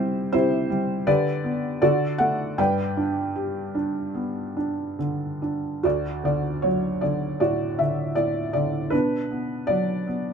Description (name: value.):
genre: classical, lyrical solo piano.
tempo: 78 BPM.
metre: 4/4.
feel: rubato.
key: G major, D major from 5.8 s.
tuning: A4 = 440 Hz.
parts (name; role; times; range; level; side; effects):
felt-muted upright piano; solo; 0.0-10.3 s; D2 to G5; -22 LUFS; equal; none.
room: light reverb.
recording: close, detailed microphones.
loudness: -22 LUFS.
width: side -6 dB against mid.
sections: 0.0-5.8 A section; 5.8-10.3 B section.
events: none.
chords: 0.0 C; 1.1 G/D; 1.8 D; 2.6 G; 5.8 D; 8.9 Bm.